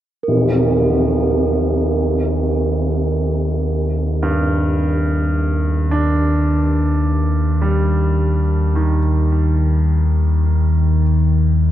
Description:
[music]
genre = dark ambient drone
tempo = 53 BPM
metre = 4/4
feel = straight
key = Eb major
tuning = A4 = 440 Hz
[part]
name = bronze singing bowl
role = texture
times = 0.2-11.7 s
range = Bb4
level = -26 LUFS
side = right 8 dB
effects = none
[part]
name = deep rumbling drone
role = drone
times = 0.4-11.7 s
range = Eb2 to Eb3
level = -16 LUFS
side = equal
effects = built-in reverb
[part]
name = tam-tam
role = percussion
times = 0.3-0.5 s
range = none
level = -21 LUFS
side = equal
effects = low-pass filter on cymbals
[part]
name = clear baby grand piano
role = arpeggios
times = 4.2-11.7 s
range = G2 to D4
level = -22 LUFS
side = right 1 dB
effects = tape echo
[sound]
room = wet cathedral reverb, RT60 5.2 s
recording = dark, warm production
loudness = -15 LUFS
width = side -12 dB against mid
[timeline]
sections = 0.3-11.7 A section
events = none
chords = 0.3 Eb

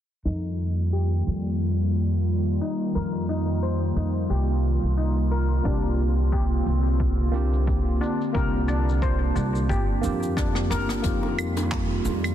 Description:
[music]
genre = sunset chillout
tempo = 89 BPM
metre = 4/4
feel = swing 57% on 16ths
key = unclear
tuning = A4 = 440 Hz
[part]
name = airy breathy pad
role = sustained chords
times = 0.4-12.3 s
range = D3 to F4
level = -29 LUFS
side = equal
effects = chorus
[part]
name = steel pan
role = arpeggios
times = 0.3-11.0 s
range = D4 to C5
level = -33 LUFS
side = left 3 dB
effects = low-pass filter, digital delay
[part]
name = upright bass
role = bass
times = 0.3-12.3 s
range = G1 to F2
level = -24 LUFS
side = equal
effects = tube saturation
[part]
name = jazz brush drum kit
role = drums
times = 0.3-12.3 s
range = claves, handclaps, hi-hat, rim click, shaker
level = -33 LUFS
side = equal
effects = soft clipping on snare
[part]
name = tine electric piano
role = accompaniment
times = 5.6-12.3 s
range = Bb3 to G4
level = -30 LUFS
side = moving between left 8 dB and right 6 dB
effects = auto-pan, digital delay
[part]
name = electronic kick drum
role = drums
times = 5.7-11.9 s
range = none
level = -28 LUFS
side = equal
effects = overdrive
[part]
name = bongos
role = percussion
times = 11.2-12.2 s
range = none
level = -36 LUFS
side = right 4 dB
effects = none
[sound]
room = light reverb, studio ambience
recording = dense, heavily limited modern master, low-pass filter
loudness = -22 LUFS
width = side -11 dB against mid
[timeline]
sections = 0.3-11.0 A section; 11.0-12.3 B section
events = filter sweep on upright bass 0.3-11.0; filter sweep on steel pan 0.3-11.0; filter sweep 0.3-11.0; drum fill 10.4-11.0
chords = 0.3 F9sus4; 5.6 C9sus4; 11.0 F9sus4

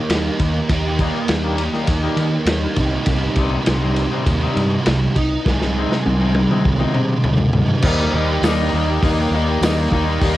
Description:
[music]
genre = indie rock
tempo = 101 BPM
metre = 4/4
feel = straight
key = unclear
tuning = A4 = 440 Hz
[part]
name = thick fuzz guitar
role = riff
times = 0.0-10.4 s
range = C3 to Ab4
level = -20 LUFS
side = right 2 dB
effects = distortion, ensemble chorus, cassette tape, analog delay
[part]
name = growling fingered electric bass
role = bass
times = 0.1-10.4 s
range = C2 to Eb3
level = -21 LUFS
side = equal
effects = overdrive
[part]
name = vintage drum kit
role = drums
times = 0.1-10.4 s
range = crash cymbal, hi-hat, kick drum, ride cymbal, snare drum, toms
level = -20 LUFS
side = equal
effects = cassette tape
[part]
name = twangy electric guitar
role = riff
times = 0.3-10.4 s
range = C3 to Eb4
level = -26 LUFS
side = left 8 dB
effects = spring reverb, cassette tape
[part]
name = tambourine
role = percussion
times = 8.4-9.8 s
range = none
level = -39 LUFS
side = left 13 dB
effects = none
[sound]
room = light reverb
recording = home recording on cassette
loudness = -16 LUFS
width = side -15 dB against mid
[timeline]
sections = 0.0-7.8 A section; 7.8-10.4 B section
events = drum fill 5.5-7.8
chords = 0.0 Eb; 2.8 Cm; 5.5 Ab/C; 7.8 Eb

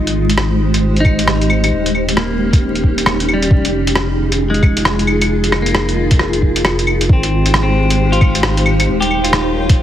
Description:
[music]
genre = future garage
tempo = 134 BPM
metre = 4/4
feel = swing 63% on 16ths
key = unclear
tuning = A4 = 440 Hz
[part]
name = clean electric guitar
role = accompaniment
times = 0.0-9.8 s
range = G3 to G4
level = -20 LUFS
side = left 1 dB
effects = sidechain pumping, ping-pong delay
[part]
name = granular cloud pad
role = sustained chords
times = 0.0-9.8 s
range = Ab3 to G5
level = -18 LUFS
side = equal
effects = built-in reverb, sidechain pumping
[part]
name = warm sub bass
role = bass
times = 0.0-9.8 s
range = Eb1 to Ab1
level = -18 LUFS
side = equal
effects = sidechain pumping
[part]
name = lo-fi sampler-style drum kit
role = drums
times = 0.1-9.8 s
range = claves, hi-hat, rim click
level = -18 LUFS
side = equal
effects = none
[part]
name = electronic kick drum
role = drums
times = 1.0-9.8 s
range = none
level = -11 LUFS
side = equal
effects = none
[sound]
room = light reverb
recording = heavily compressed radio sound, multiband compression, vinyl crackle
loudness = -12 LUFS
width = side -11 dB against mid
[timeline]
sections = 0.0-7.1 A section; 7.1-9.8 B section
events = none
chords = 0.0 Abmaj7; 1.7 Eb7; 3.5 Fm7; 7.1 Abmaj7; 8.9 Eb7

